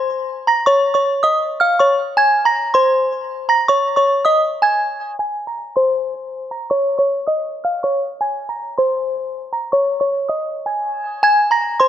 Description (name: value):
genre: hip hop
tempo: 159 BPM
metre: 4/4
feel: half-time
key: Bb minor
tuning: A4 = 440 Hz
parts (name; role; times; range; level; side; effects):
- delicate synth tine bell; solo; 0.0-11.9 s; C5 to Bb6; -15 LUFS; equal; chorus, low-pass filter
room: light reverb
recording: dark, warm production, low-pass filter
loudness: -15 LUFS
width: side -10 dB against mid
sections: 0.0-5.2 A section; 5.2-11.2 B section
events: filter sweep 5.2-11.2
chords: 0.0 Bbm; 2.2 Absus4; 5.2 Bbm7; 8.2 Absus4; 11.2 Bb7(no3)